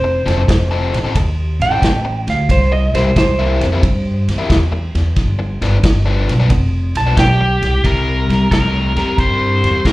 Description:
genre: electric blues shuffle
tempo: 90 BPM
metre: 4/4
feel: swing 68% on 8ths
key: C mixolydian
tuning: A4 = 439 Hz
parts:
  - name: clean lap steel guitar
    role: second line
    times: 0.0-7.8 s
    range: C5 to A5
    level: -19 LUFS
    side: right 2 dB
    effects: slapback echo
  - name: biting overdriven guitar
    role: riff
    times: 0.0-9.9 s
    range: G2 to A4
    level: -20 LUFS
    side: left 3 dB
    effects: slapback echo
  - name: upright bass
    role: bass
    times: 0.0-9.9 s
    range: F1 to G2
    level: -16 LUFS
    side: equal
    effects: none
  - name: vintage drum kit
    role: drums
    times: 0.3-9.9 s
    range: kick drum, ride cymbal, snare drum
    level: -19 LUFS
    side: equal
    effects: none
  - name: biting lead guitar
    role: melody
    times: 7.2-9.9 s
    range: G4 to C5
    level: -18 LUFS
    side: equal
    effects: overdrive, slapback echo
room: little or no reverb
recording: live gig heard through the venue's PA, club reverb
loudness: -13 LUFS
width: side -18 dB against mid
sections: 0.0-7.8 A section; 7.8-9.9 B section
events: electric slide guitar solo 0.0-7.8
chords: 0.0 F7; 2.5 C7; 5.2 G7; 7.8 C7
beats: 0.49 1.16 1.83 | 2.49 3.16 3.83 4.50 | 5.17 5.83 6.50 7.17 | 7.84 8.51 9.18 9.85

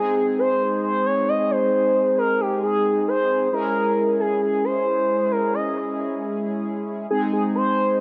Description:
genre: pop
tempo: 134 BPM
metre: 4/4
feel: straight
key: Ab major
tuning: A4 = 439 Hz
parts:
  - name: expressive portamento lead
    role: melody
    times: 0.0-8.0 s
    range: G4 to Eb5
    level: -23 LUFS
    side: equal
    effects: chorus, digital delay
  - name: analog synth brass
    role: accompaniment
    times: 0.0-8.0 s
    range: Ab3 to Ab4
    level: -27 LUFS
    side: equal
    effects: chorus
room: moderate plate reverb, RT60 2.7 s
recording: none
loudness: -22 LUFS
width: mono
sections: 0.0-8.0 A section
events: none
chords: 0.0 Ab; 3.5 Dbm6; 7.1 Ab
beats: 0.39 0.84 1.28 | 1.73 2.18 2.63 3.08 | 3.52 3.97 4.42 4.87 | 5.31 5.76 6.21 6.66 | 7.11 7.55 8.00

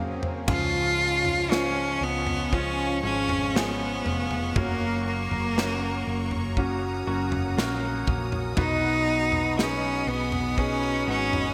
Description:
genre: pop ballad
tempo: 60 BPM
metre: 4/4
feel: straight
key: Db mixolydian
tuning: A4 = 440 Hz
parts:
  - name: warm concert grand piano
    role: accompaniment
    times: 0.0-11.5 s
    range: Gb2 to F5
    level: -34 LUFS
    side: equal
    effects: lush chorus
  - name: clear studio string section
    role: sustained chords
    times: 0.0-11.5 s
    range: Db3 to Eb6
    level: -39 LUFS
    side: equal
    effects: none
  - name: direct-recorded clean electric guitar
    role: arpeggios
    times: 0.0-11.5 s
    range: Gb2 to Ab4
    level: -40 LUFS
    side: equal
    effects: none
  - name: swell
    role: sound effects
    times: 0.0-0.5 s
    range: none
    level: -43 LUFS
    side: equal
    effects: none
  - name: modern studio drum kit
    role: drums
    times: 0.2-11.5 s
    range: crash cymbal, kick drum, snare drum, toms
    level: -32 LUFS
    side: equal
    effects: gated reverb
  - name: bright cello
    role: melody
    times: 0.5-11.5 s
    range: Bb3 to F4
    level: -28 LUFS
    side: equal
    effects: none
  - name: hollow-body short-scale fingered electric bass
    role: bass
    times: 0.5-11.5 s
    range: F1 to Db2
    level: -34 LUFS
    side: equal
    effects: none
room: wet lush hall reverb, RT60 2.7 s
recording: bright 1980s-style digital production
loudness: -26 LUFS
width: mono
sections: 0.5-11.5 A section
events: drum fill 0.0-0.5; grand piano fill 0.0-0.5; swell 0.0-0.5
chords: 0.5 Db; 4.6 Gb; 8.6 Cb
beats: | 0.48 1.50 2.53 3.55 | 4.56 5.56 6.57 7.57 | 8.57 9.57 10.58

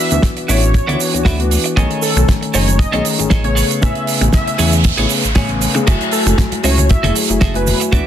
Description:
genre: nu-disco, nu disco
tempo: 117 BPM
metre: 4/4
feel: swing 53% on 16ths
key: F# minor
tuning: A4 = 440 Hz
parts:
  - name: wide unison lead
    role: melody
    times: 0.0-7.8 s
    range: A4 to E5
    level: -22 LUFS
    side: left 1 dB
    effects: ping-pong delay
  - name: dark concert grand piano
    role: accompaniment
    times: 0.0-8.1 s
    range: C#3 to G#5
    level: -19 LUFS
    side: left 3 dB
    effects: sidechain pumping, dub echo
  - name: clean electric guitar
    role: riff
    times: 0.0-8.1 s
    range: F#4 to E5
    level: -23 LUFS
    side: right 4 dB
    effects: lush chorus, dub echo
  - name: chorused synth bass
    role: bass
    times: 0.1-8.0 s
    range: F#1 to E2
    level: -16 LUFS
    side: equal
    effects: none
  - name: damped 70s drum kit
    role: drums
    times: 0.1-8.0 s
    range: crash cymbal, finger snaps, hi-hat, shaker, snare drum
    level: -20 LUFS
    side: right 4 dB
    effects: none
  - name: kick drum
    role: drums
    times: 0.2-8.0 s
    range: none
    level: -14 LUFS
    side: equal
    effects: none
  - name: noise sweep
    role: sound effects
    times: 4.2-5.9 s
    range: none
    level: -24 LUFS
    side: right 2 dB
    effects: none
  - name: cabasa, congas and bongos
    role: percussion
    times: 5.9-8.0 s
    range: none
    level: -24 LUFS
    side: left 3 dB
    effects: none
room: light reverb, small room reverb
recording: dense, heavily limited modern master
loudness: -12 LUFS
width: side -10 dB against mid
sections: 0.0-8.1 A section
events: noise sweep 4.2-5.9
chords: 0.0 D69; 1.8 B13; 3.6 Amaj9; 5.9 F#m9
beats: 0.23 0.75 1.26 | 1.77 2.28 2.80 3.31 | 3.82 4.33 4.85 5.36 | 5.87 6.39 6.90 7.41 | 7.92

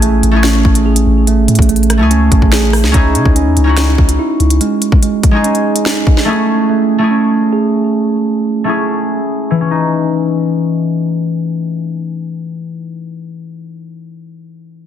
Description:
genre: hip hop, drill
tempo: 144 BPM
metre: 4/4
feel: half-time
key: C# minor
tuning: A4 = 440 Hz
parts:
  - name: concert harp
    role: accompaniment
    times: 0.0-13.4 s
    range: E3 to G#4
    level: -16 LUFS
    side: left 4 dB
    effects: low-pass filter
  - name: mellow tine electric piano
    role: arpeggios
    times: 0.0-9.6 s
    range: G#3 to G#4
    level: -15 LUFS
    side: right 7 dB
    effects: low-pass filter, digital delay
  - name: long sustained 808-style bass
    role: bass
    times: 0.0-4.6 s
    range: G#1 to C#3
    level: -12 LUFS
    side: equal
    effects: none
  - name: drill drum kit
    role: drums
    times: 0.0-6.3 s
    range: finger snaps, hi-hat, kick drum, rim click, snare drum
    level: -12 LUFS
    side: equal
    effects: none
room: light reverb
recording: dense, heavily limited modern master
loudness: -10 LUFS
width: side -10 dB against mid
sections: 0.0-2.9 A section; 2.9-9.6 B section; 9.6-12.9 C section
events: filter sweep 2.9-9.6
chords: 0.0 Amaj7; 2.9 C#madd9; 4.6 G#sus4; 6.3 Amaj7; 9.6 C#madd9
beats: 0.03 0.44 0.86 | 1.27 1.69 2.11 2.52 | 2.94 3.36 3.77 4.19 | 4.61 5.03 5.44 5.86 | 6.28 6.69 7.11 7.53 | 7.94 8.36 8.78 9.19 | 9.61 10.03 10.44 10.86 | 11.28 11.69 12.11 12.53

